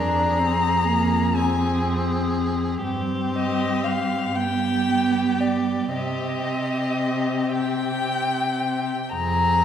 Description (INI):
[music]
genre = classical, slow romantic movement for string quartet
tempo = 37-42 BPM (dotted quarters)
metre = 6/8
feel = rubato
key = C minor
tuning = A4 = 440 Hz
[part]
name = warm violin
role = melody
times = 0.0-9.6 s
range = D5 to Bb5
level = -25 LUFS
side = left 4 dB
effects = none
[part]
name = rich violin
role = second line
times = 0.0-9.6 s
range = G4 to Ab4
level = -31 LUFS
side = left 1 dB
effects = none
[part]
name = rich viola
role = accompaniment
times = 0.0-9.6 s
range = Bb3 to D4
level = -25 LUFS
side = right 1 dB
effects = none
[part]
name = rich cello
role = bass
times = 0.0-9.6 s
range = F2 to C3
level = -26 LUFS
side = right 2 dB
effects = none
[sound]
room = wet recital hall reverb, RT60 1.4 s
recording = heard from further back in the room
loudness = -20 LUFS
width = side -9 dB against mid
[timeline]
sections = 0.0-9.1 A section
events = none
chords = 0.0 Fm; 2.8 C5/G; 4.3 G; 5.9 Cm